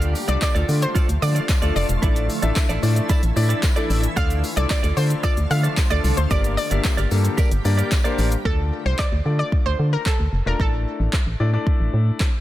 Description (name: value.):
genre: dance-pop.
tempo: 112 BPM.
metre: 4/4.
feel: straight.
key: D minor.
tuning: A4 = 441 Hz.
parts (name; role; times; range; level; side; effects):
analog pluck; melody; 0.0-11.4 s; A4 to F5; -27 LUFS; equal; chorus, digital delay.
warm concert grand piano; accompaniment; 0.0-12.3 s; A3 to E5; -28 LUFS; left 5 dB; sidechain pumping.
shimmering ambient pad; sustained chords; 0.0-8.4 s; D3 to G4; -31 LUFS; equal; chorus, built-in reverb, sidechain pumping.
direct-recorded clean electric guitar; riff; 0.0-8.4 s; E4 to D5; -30 LUFS; right 5 dB; lush chorus.
organ-like FM bass; bass; 0.0-12.1 s; E1 to D3; -20 LUFS; equal; sidechain pumping.
deep house drum kit; drums; 0.0-12.3 s; handclaps, hi-hat, kick drum, shaker, snare drum; -22 LUFS; equal; none.
tambourine; percussion; 0.1-8.3 s; none; -40 LUFS; left 8 dB; none.
room: little or no reverb.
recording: dense, heavily limited modern master.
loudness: -18 LUFS.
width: side -14 dB against mid.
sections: 0.0-8.5 A section; 8.5-12.4 B section.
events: none.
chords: 0.0 Dm; 2.0 Asus4; 4.2 Dm; 6.3 Gm; 8.5 Dm; 10.6 Asus4.